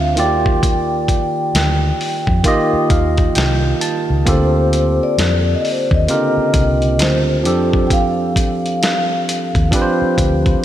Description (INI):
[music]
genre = R&B, neo-soul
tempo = 66 BPM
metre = 4/4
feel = swing 61% on 16ths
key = unclear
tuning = A4 = 440 Hz
[part]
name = vibraphone with soft mallets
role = melody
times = 0.0-10.6 s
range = C5 to G5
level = -20 LUFS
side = left 1 dB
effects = none
[part]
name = barky tine electric piano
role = accompaniment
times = 0.0-10.6 s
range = C3 to A5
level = -18 LUFS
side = right 1 dB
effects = none
[part]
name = vintage muted fingered electric bass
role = bass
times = 0.0-10.5 s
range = C2 to F2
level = -18 LUFS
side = equal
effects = none
[part]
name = dusty soul sampler-style drum kit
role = drums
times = 0.2-10.6 s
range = hi-hat, kick drum, snare drum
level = -18 LUFS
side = equal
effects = none
[sound]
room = moderate lush hall reverb, RT60 2.8 s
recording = dreamy mix soaked in reverb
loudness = -13 LUFS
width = side -11 dB against mid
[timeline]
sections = 0.0-10.6 A section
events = tine electric piano fill 2.4-4.3, 10.2-10.6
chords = 0.2 Ebmaj7; 4.3 Bbmaj13/D; 7.4 F69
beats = | 0.63 1.54 2.45 3.36 | 4.27 5.17 6.08 6.99 | 7.90 8.81 9.72 10.63